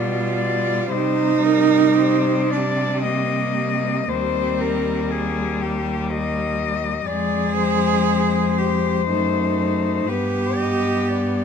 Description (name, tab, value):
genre	classical, lyrical piece for cello ensemble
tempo	55-62 BPM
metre	3/4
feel	rubato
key	C minor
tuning	A4 = 438 Hz
part	warm cello	melody	0.0-11.4 s	G4 to Eb5	-24 LUFS	left 10 dB	none
part	warm cello	second line	0.0-11.4 s	Bb3 to Ab4	-22 LUFS	right 7 dB	none
part	rich cello	accompaniment	0.0-11.4 s	G3 to B3	-25 LUFS	left 5 dB	none
part	rich cello	bass	0.0-11.4 s	Eb2 to C3	-25 LUFS	right 1 dB	none
room	moderate recital hall reverb, RT60 1.5 s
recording	close, detailed microphones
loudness	-18 LUFS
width	side -7 dB against mid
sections	0.0-11.4 A section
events	none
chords	0.0 G7/B; 0.9 Cm; 4.1 Cm/Eb; 7.1 Fm69; 9.1 F#dim7; 10.1 G